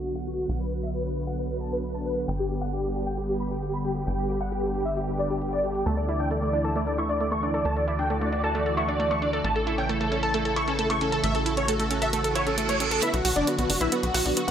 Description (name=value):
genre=uplifting trance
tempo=134 BPM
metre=4/4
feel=straight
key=B minor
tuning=A4 = 438 Hz
part: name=supersaw chords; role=melody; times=0.0-14.5 s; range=D4 to C#6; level=-28 LUFS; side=equal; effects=ensemble chorus, vintage 12-bit sampler grit, low-pass filter, dub echo
part: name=bright grand piano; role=second line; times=0.0-14.5 s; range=F#4 to C#6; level=-35 LUFS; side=left 2 dB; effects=low-pass filter, dub echo
part: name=analog string pad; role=sustained chords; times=0.0-14.5 s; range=C#3 to G4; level=-31 LUFS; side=equal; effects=ensemble chorus
part: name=tight sequencer bass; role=bass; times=0.0-14.5 s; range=F#1 to D2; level=-31 LUFS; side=equal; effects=none
part: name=electronic hi-hat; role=drums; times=0.0-14.5 s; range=none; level=-31 LUFS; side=equal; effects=none
part: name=analog pluck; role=arpeggios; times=5.9-14.5 s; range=A3 to B4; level=-30 LUFS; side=right 2 dB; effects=chorus, cassette tape, dub echo
part: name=reverse cymbal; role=sound effects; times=12.3-13.0 s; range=none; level=-34 LUFS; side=right 6 dB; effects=none
room=light reverb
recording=low-pass filter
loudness=-24 LUFS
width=side -9 dB against mid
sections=0.0-13.0 A section; 13.0-14.5 B section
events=filter sweep on supersaw synth 0.0-13.0; filter sweep on grand piano 0.0-13.0; filter sweep 0.0-13.0; reverse cymbal 12.3-13.0; build-up 13.0-14.5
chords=0.0 Bm; 2.3 G; 5.9 Dsus2; 9.4 A; 13.0 Bm